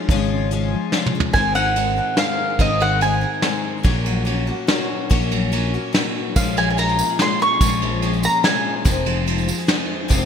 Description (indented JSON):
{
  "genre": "indie folk with a building arrangement",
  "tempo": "144 BPM",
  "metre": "3/4",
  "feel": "straight",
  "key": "Ab mixolydian",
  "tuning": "A4 = 440 Hz",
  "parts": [
    { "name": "fingerpicked steel-string acoustic guitar", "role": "accompaniment", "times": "0.0-10.3 s", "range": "F2 to Ab4", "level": "-28 LUFS", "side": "left 3 dB", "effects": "analog chorus" },
    { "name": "picked twelve-string acoustic guitar", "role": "accompaniment", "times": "0.0-10.3 s", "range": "F2 to Bb4", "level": "-26 LUFS", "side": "left 8 dB", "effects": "lush chorus" },
    { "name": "fingered electric bass", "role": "bass", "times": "0.1-10.3 s", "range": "F1 to Bb1", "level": "-23 LUFS", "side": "right 1 dB", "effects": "none" },
    { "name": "soft brush drum kit", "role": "drums", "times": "0.1-10.2 s", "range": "hi-hat, kick drum, ride cymbal, snare drum, toms", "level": "-21 LUFS", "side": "right 1 dB", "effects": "gated reverb" },
    { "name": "mandolin", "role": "melody", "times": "1.3-3.6, 6.4-8.7 s", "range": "Eb5 to Db6", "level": "-20 LUFS", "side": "right 1 dB", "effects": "ping-pong delay" },
    { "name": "tambourine", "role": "percussion", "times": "6.4-10.2 s", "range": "none", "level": "-32 LUFS", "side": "right 8 dB", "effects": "none" }
  ],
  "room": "moderate plate reverb, RT60 2.1 s",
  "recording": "bright 1980s-style digital production",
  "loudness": "-17 LUFS",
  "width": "side -7 dB against mid",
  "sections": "0.0-1.3 A section; 1.3-10.3 B section",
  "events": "drum fill 0.9-1.3",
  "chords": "0.0 Db; 1.3 Abadd9; 3.8 Gb/Bb; 6.4 Bbm7; 8.9 Fm7"
}